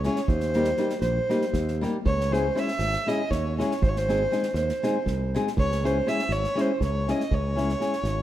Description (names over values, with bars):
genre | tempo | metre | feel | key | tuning
balkan folk, Balkan wedding band | 239 BPM (eighths) | 7/8 | straight | C# hungarian minor | A4 = 440 Hz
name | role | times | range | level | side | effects
warm fiddle | melody | 0.0-8.2 s | B#4 to E5 | -28 LUFS | right 1 dB | none
nylon-string guitar | accompaniment | 0.0-7.9 s | G3 to G#4 | -28 LUFS | left 2 dB | none
modern bright fingered electric bass | bass | 0.0-8.2 s | G#1 to D#2 | -28 LUFS | equal | none
unplugged drum kit | percussion | 0.0-8.1 s | kick drum, snare drum | -31 LUFS | right 1 dB | none
room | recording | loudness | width
light reverb | minimal, uncompressed stereo recording | -23 LUFS | side -12 dB against mid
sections
0.0-8.2 A section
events
none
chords
0.3 D#; 2.1 C#m; 3.8 G#; 5.6 C#m